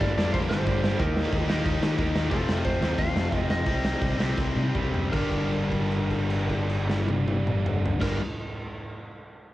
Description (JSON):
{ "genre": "punk rock", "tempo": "154-182 BPM", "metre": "4/4", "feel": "straight", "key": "G minor", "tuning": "A4 = 438 Hz", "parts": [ { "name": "lightly driven lead guitar", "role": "melody", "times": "0.0-8.2 s", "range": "A4 to F5", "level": "-34 LUFS", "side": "right 2 dB", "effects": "analog delay" }, { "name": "cranked stack guitar", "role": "riff", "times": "0.0-8.2 s", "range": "F2 to Eb4", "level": "-29 LUFS", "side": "left 5 dB", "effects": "overdrive, cassette tape" }, { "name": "sludgy distorted guitar", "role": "riff", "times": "0.0-2.3 s", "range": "G2 to Eb4", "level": "-35 LUFS", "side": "equal", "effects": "none" }, { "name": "tight distorted guitar", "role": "riff", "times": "0.0-8.2 s", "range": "G2 to G4", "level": "-34 LUFS", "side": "right 6 dB", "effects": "distortion, cassette tape" }, { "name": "overdriven picked electric bass", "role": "bass", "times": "0.0-8.2 s", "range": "F1 to Eb3", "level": "-29 LUFS", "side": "equal", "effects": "none" }, { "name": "raw garage drum kit", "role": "drums", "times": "0.0-8.1 s", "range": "crash cymbal, hi-hat, kick drum, snare drum, toms", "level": "-28 LUFS", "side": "equal", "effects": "cassette tape" } ], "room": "little or no reverb", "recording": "home recording on cassette", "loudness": "-23 LUFS", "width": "side -15 dB against mid", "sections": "0.0-5.1 A section; 5.1-8.2 B section", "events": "slowing down 2.3-5.1; drum fill 4.4-5.1; held note 5.1-8.0", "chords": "0.0 Gm; 1.0 Eb; 2.3 F; 3.7 Cm; 5.1 Gm", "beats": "0.01 0.34 0.67 | 1.00 1.33 1.66 1.99 | 2.32 2.65 2.98 3.32 | 3.67 4.02 4.38 4.75 | 5.13 5.52 5.91 6.30 | 6.69 7.08 7.47 7.86" }